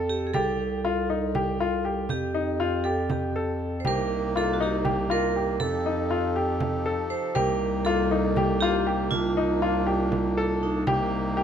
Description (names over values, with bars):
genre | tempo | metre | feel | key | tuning
contemporary instrumental, chamber music in an uneven meter | 239 BPM (eighths) | 7/8 | straight | C dorian | A4 = 439 Hz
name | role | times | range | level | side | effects
vibraphone with hard mallets | second line | 0.0-10.9 s | Eb4 to C5 | -29 LUFS | right 6 dB | none
clear baby grand piano | arpeggios | 0.0-11.4 s | Eb4 to A4 | -27 LUFS | left 4 dB | none
warm bass clarinet | bass | 0.0-11.4 s | C2 to F2 | -29 LUFS | left 1 dB | none
frame drum | percussion | 0.3-11.1 s | none | -33 LUFS | right 3 dB | none
hand-pumped harmonium | sustained chords | 3.8-11.4 s | C3 to A4 | -32 LUFS | right 1 dB | none
room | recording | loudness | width
light reverb | close, detailed microphones | -23 LUFS | side -8 dB against mid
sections
0.0-10.9 A section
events
none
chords
0.3 Cm; 2.1 F9; 3.9 Cm7; 5.6 F9; 7.4 Cm7; 9.1 Cm9; 10.9 Cm7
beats
0.09 | 0.34 0.59 0.84 1.09 1.34 1.59 1.85 | 2.10 2.35 2.60 2.85 3.10 3.35 3.60 | 3.85 4.10 4.35 4.60 4.86 5.11 5.36 | 5.61 5.86 6.11 6.36 6.61 6.86 7.11 | 7.36 7.61 7.86 8.11 8.36 8.62 8.87 | 9.12 9.37 9.62 9.87 10.12 10.37 10.62 | 10.87 11.12 11.37